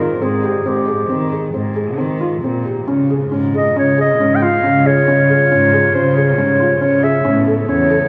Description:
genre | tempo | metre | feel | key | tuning
contemporary instrumental, chamber music in an uneven meter | 137 BPM | 5/4 | straight | unclear | A4 = 440 Hz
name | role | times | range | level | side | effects
mellow clarinet | melody | 0.0-8.1 s | G4 to G5 | -18 LUFS | equal | none
felt-muted upright piano | arpeggios | 0.0-8.1 s | C4 to A4 | -20 LUFS | equal | none
dark cello | bass | 0.0-8.1 s | E2 to Eb3 | -22 LUFS | equal | none
dark chamber string section | sustained chords | 2.9-8.1 s | Db3 to F4 | -27 LUFS | equal | none
room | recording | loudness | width
wet cathedral reverb, RT60 6.1 s | recorded in a church or concert hall, nothing above 10.9 kHz | -15 LUFS | mono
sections
0.0-8.1 A section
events
none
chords
0.0 Ab6; 2.9 Db; 7.3 Aadd9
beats
0.21 | 0.65 1.09 1.53 1.98 2.42 | 2.87 3.31 3.75 4.19 4.63 | 5.07 5.51 5.94 6.38 6.81 | 7.25 7.69

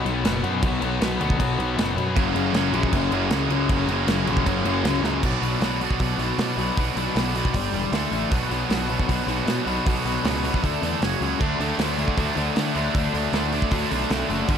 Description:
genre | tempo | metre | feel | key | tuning
punk rock | 156 BPM | 4/4 | straight | B minor from 5.2 s | A4 = 440 Hz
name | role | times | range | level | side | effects
distorted electric guitar | riff | 0.0-14.6 s | F#2 to D4 | -26 LUFS | left 8 dB | distortion
tight distorted guitar | riff | 0.0-5.2, 11.4-14.6 s | F#2 to D4 | -30 LUFS | right 3 dB | distortion
fuzz picked electric bass | bass | 0.0-14.6 s | E1 to D3 | -27 LUFS | equal | overdrive
loose indie drum kit | drums | 0.1-14.6 s | crash cymbal, hi-hat, kick drum, snare drum | -26 LUFS | right 1 dB | none
tight distorted guitar | riff | 2.2-14.6 s | F#2 to D5 | -27 LUFS | right 17 dB | distortion
room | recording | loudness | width
little or no reverb | none | -20 LUFS | side -8 dB against mid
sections
0.0-5.2 A section; 5.2-14.6 B section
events
drum fill 5.0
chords
0.0 B5; 2.2 F#; 5.2 Bm; 7.5 G5; 7.9 D5; 8.3 Bm; 10.6 D5; 11.0 F#5; 11.4 D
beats
0.24 | 0.63 1.01 1.39 1.77 | 2.16 2.54 2.92 3.31 | 3.69 4.08 4.46 4.85 | 5.23 5.62 6.00 6.39 | 6.77 7.16 7.54 7.93 | 8.32 8.70 9.09 9.47 | 9.86 10.25 10.63 11.02 | 11.40 11.79 12.17 12.56 | 12.95 13.33 13.72 14.10 | 14.49

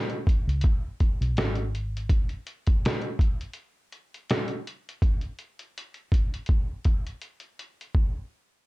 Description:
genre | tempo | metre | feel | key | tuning
lo-fi hip hop | 82 BPM | 4/4 | swing 56% on 16ths | unclear | A4 = 440 Hz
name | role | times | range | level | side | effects
trip hop sampler-style drum kit | drums | 0.1-8.1 s | hi-hat, kick drum, snare drum | -24 LUFS | equal | none
vintage muted fingered electric bass | bass | 0.5-2.1 s | G#1 to C#2 | -27 LUFS | equal | none
room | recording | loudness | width
light reverb | dark, warm production | -24 LUFS | side -21 dB against mid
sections
0.0-7.9 A section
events
none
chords
none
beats
0.63 1.36 | 2.09 2.82 3.56 4.29 | 5.02 5.75 6.48 7.21 | 7.95

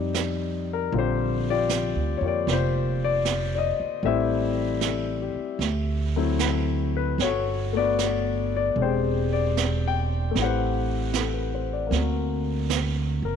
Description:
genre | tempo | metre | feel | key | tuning
jazz ballad | 76 BPM | 4/4 | swing 69% on 8ths | unclear | A4 = 438 Hz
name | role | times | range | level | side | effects
warm grand piano | accompaniment | 0.0-13.4 s | D3 to G5 | -26 LUFS | left 8 dB | none
upright bass | bass | 0.0-13.4 s | E1 to F2 | -27 LUFS | right 3 dB | none
jazz brush drum kit | drums | 0.1-13.4 s | brushed snare drum, hi-hat, snare drum | -32 LUFS | right 12 dB | none
room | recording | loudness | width
light reverb, small room ambience | 1960s-style stereo with parts hard left and right | -23 LUFS | side -7 dB against mid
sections
0.0-13.4 A section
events
none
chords
0.0 Fsus2; 0.9 Bb6; 4.0 Am7; 5.6 D9; 7.2 Gmaj9; 8.8 E7alt; 10.3 Am9; 11.9 D7b13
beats
0.15 | 0.92 1.70 2.47 3.25 | 4.03 4.81 5.60 6.39 | 7.18 7.98 8.77 9.56 | 10.35 11.13 11.92 12.70

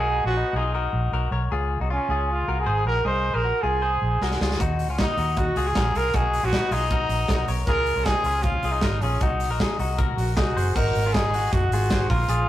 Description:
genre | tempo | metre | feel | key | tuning
jangly indie pop | 156 BPM | 4/4 | straight | unclear | A4 = 440 Hz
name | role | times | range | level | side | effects
clear trumpet | melody | 0.0-12.5 s | Db4 to C5 | -25 LUFS | right 1 dB | slapback echo
direct-recorded clean electric guitar | arpeggios | 0.0-12.5 s | Ab3 to Db5 | -28 LUFS | left 4 dB | spring reverb
vintage muted fingered electric bass | bass | 0.0-12.5 s | Gb1 to Eb2 | -26 LUFS | equal | none
modern studio drum kit | drums | 4.2-12.4 s | crash cymbal, hi-hat, kick drum, snare drum | -26 LUFS | right 1 dB | none
room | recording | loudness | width
moderate stone room reverb, RT60 0.9 s | rough rehearsal-room recording, tube saturation | -21 LUFS | side -13 dB against mid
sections
0.0-10.8 A section; 10.8-12.5 B section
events
drum fill 4.2-4.6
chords
0.0 Cbmaj7; 1.5 Dbmaj7; 3.1 Ab7; 6.1 Cbmaj7; 7.7 Dbmaj7; 9.2 Ab7; 10.8 Ab7(no3)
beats
0.36 0.74 1.13 | 1.51 1.90 2.29 2.67 | 3.06 3.44 3.83 4.21 | 4.60 4.98 5.37 5.75 | 6.14 6.53 6.91 7.29 | 7.68 8.06 8.45 8.84 | 9.22 9.60 9.99 10.37 | 10.76 11.14 11.53 11.91 | 12.30

